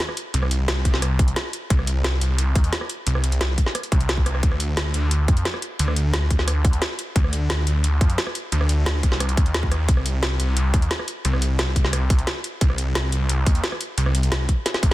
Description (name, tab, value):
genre	dark technical drum and bass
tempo	176 BPM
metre	4/4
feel	straight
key	unclear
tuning	A4 = 441 Hz
part	drum and bass drum kit	drums	0.0-14.9 s	hi-hat, rim click, snare drum	-26 LUFS	equal	none
part	snarling distorted saw bass	bass	0.3-14.9 s	C2 to F2	-21 LUFS	equal	distortion
part	electronic kick drum	drums	0.9-14.9 s	none	-19 LUFS	equal	none
room	little or no reverb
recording	dense, heavily limited modern master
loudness	-19 LUFS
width	side -17 dB against mid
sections	0.0-14.9 A section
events	drum fill 14.7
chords	none